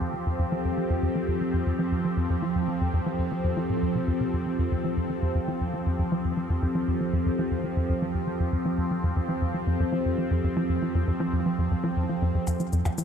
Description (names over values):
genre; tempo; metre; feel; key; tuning
ambient, sequencer-driven space music; 118 BPM; 4/4; straight; F major; A4 = 440 Hz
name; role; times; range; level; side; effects
phased analog pad; sustained chords; 0.0-13.0 s; F3 to A4; -28 LUFS; equal; phaser, chorus, shimmer reverb
tight sequencer bass; riff; 0.0-13.0 s; F2 to F3; -27 LUFS; equal; wide subtle chorus, ping-pong delay
shaker and percussion blips; percussion; 12.5-13.0 s; none; -37 LUFS; left 3 dB; ping-pong delay
room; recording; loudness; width
wet huge ambient reverb, RT60 7.6 s; dark, warm production; -24 LUFS; side -7 dB against mid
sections
0.0-12.5 A section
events
filter sweep on analog synth bass 0.0-12.5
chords
0.0 F; 12.5 N.C.